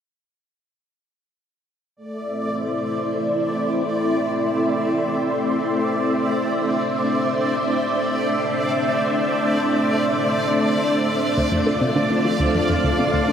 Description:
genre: ambient, sequencer-driven space music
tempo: free time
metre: none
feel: none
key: A minor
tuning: A4 = 440 Hz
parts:
  - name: string machine, full ensemble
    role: sustained chords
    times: 2.0-13.3 s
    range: A3 to F5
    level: -20 LUFS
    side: equal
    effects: ensemble chorus, shimmer reverb
  - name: bubbling stepped-filter texture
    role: texture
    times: 2.0-13.3 s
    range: D5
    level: -26 LUFS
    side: right 1 dB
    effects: chorus, built-in reverb, shimmer reverb
  - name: analog pluck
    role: riff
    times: 11.4-13.3 s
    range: D2 to A3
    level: -22 LUFS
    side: equal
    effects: chorus, tape echo
room: wet huge ambient reverb, RT60 8.4 s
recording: none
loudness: -18 LUFS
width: side -8 dB against mid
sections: 2.0-13.3 A section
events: filter sweep on string machine 2.0-13.3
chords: 2.0 Am; 11.4 Dm

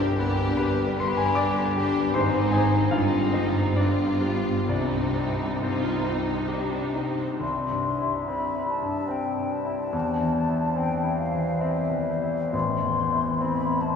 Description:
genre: classical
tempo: 62-78 BPM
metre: 3/4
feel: rubato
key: C minor, C major from 7.4 s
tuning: A4 = 435 Hz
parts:
  - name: clear concert grand piano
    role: melody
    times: 0.0-14.0 s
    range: A1 to D6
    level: -26 LUFS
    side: left 2 dB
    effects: none
  - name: warm symphonic violin section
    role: melody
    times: 0.0-7.2 s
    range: G4 to C5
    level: -38 LUFS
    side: left 3 dB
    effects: none
  - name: bright symphonic violin section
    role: second line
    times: 0.0-7.2 s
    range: Eb4 to G4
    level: -35 LUFS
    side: left 2 dB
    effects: none
  - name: rich studio viola section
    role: accompaniment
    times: 0.0-7.4 s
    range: B3 to F4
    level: -32 LUFS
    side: equal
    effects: none
  - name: rich symphonic cello section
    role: bass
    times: 0.0-7.2 s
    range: G2 to C3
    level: -31 LUFS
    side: right 2 dB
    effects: none
  - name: rich symphonic double bass section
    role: bass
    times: 0.0-7.2 s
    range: G1 to C2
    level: -32 LUFS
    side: right 1 dB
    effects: none
  - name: clear clarinet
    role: second line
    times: 7.4-14.0 s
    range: C5 to E5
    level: -36 LUFS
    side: right 2 dB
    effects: none
  - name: mellow hollow silver concert flute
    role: second line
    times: 7.4-14.0 s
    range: E5 to C6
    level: -28 LUFS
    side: left 3 dB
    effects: none
  - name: mellow bassoon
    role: accompaniment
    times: 7.4-14.0 s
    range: E3 to G3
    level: -32 LUFS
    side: left 3 dB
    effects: none
room: wet cathedral reverb, RT60 5.5 s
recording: heard from further back in the room, studio ambience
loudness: -22 LUFS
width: side -6 dB against mid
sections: 0.0-7.4 A section; 7.4-14.0 B section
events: none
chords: 0.0 G; 2.1 Ab; 2.9 Cm/G; 3.8 G7; 4.7 Cm; 7.4 C; 12.5 Am

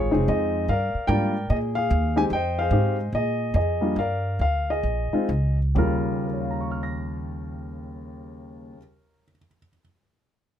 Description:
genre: jazz piano trio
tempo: 126-148 BPM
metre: 4/4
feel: swing 64% on 8ths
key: Eb mixolydian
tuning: A4 = 438 Hz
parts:
  - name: warm grand piano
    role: melody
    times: 0.0-9.8 s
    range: Eb2 to Bb6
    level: -25 LUFS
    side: left 2 dB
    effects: none
  - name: upright bass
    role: bass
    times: 0.0-8.7 s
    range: F1 to Bb2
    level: -26 LUFS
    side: right 1 dB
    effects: none
room: little or no reverb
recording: close, detailed microphones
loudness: -22 LUFS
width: side -10 dB against mid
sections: 0.0-5.8 A section; 5.8-9.6 B section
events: slowing down 2.3-5.8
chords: 0.0 Bb7sus4 (rootless); 0.7 Gm7; 1.5 Bb7sus4; 2.3 Fm7; 3.1 Bb7sus4; 4.0 Gm7; 4.8 Bb7sus4; 5.8 Eb9

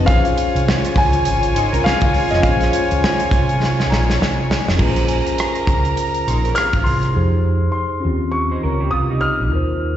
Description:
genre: lush 1970s-style soul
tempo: 102 BPM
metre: 4/4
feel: swing 58% on 16ths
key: unclear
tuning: A4 = 442 Hz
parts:
  - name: warm studio violin section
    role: second line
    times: 0.0-7.1 s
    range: F4 to Bb5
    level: -22 LUFS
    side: equal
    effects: slapback echo
  - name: tine electric piano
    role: accompaniment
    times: 0.0-10.0 s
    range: C4 to C5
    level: -24 LUFS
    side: left 2 dB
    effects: medium stereo tremolo, slapback echo
  - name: hollow-body short-scale fingered electric bass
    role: bass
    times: 0.0-10.0 s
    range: F1 to F2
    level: -19 LUFS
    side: equal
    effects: none
  - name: warm grand piano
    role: melody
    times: 0.1-10.0 s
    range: Eb5 to F6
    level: -22 LUFS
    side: left 2 dB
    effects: slapback echo, analog delay
  - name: modern studio drum kit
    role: drums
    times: 0.1-7.1 s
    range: crash cymbal, hi-hat, kick drum, rim click, snare drum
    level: -20 LUFS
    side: equal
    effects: none
  - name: electric guitar through a small old amp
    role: riff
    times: 1.6-9.5 s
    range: G3 to C5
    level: -27 LUFS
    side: right 4 dB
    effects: analog chorus, slapback echo
  - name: worn celesta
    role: texture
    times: 3.9-7.4 s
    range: F5 to Bb5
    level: -35 LUFS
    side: equal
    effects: none
room: light reverb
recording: live gig heard through the venue's PA, recital hall reverb, nothing above 7.9 kHz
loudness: -15 LUFS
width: side -11 dB against mid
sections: 0.0-4.8 A section; 4.8-7.2 B section; 7.2-10.0 C section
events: drum fill 3.6-4.8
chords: 0.1 Bbm7; 7.2 Fm7; 8.0 Eb13

